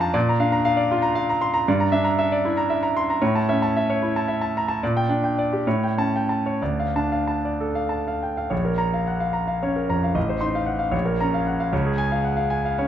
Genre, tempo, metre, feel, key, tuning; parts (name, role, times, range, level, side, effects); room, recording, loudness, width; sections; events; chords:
classical, romantic character piece for solo piano; 59-82 BPM (dotted quarters); 6/8; rubato; D minor, Bb minor from 8.5 s; A4 = 439 Hz
clear concert grand piano; solo; 0.0-12.9 s; A1 to C6; -20 LUFS; equal
moderate recital hall reverb, RT60 1.4 s; -20 LUFS; side -10 dB against mid
0.0-8.5 A section; 8.5-12.9 B section
0.1 Bb; 1.7 Em7b5/G; 3.2 A; 4.8 Gm/Bb; 5.7 A7; 6.6 Dm; 8.5 Bbm; 10.2 F7/A; 10.9 Bbm; 11.7 Db